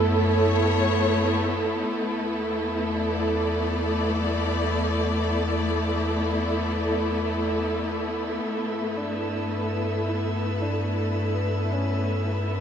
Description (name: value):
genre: ambient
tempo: 55 BPM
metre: 3/4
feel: straight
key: E dorian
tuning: A4 = 440 Hz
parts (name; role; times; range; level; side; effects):
- warm studio string section; sustained chords; 0.0-12.6 s; A3 to D5; -24 LUFS; equal; none
- handpan; arpeggios; 0.0-0.9 s; A4; -34 LUFS; equal; none
- warm sub bass; bass; 0.0-12.6 s; E2 to G2; -28 LUFS; equal; none
- felt-muted upright piano; melody; 1.9-12.6 s; G3 to E4; -38 LUFS; right 1 dB; ping-pong delay
- drifting glass-harmonics texture; texture; 6.0-12.6 s; E5 to E6; -40 LUFS; left 1 dB; chorus, built-in reverb
room: moderate huge ambient reverb, RT60 8.2 s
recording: none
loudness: -23 LUFS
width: side -8 dB against mid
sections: 0.0-1.9 A section; 1.9-12.6 B section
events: fade-in on synth texture 1.9-12.6; fade-in on felt piano 1.9-12.6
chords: 0.0 F#m7; 1.9 E7(no3); 8.4 G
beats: 0.81 | 1.90 2.99 4.08 | 5.17 6.26 7.35 | 8.45 9.54 10.63 | 11.72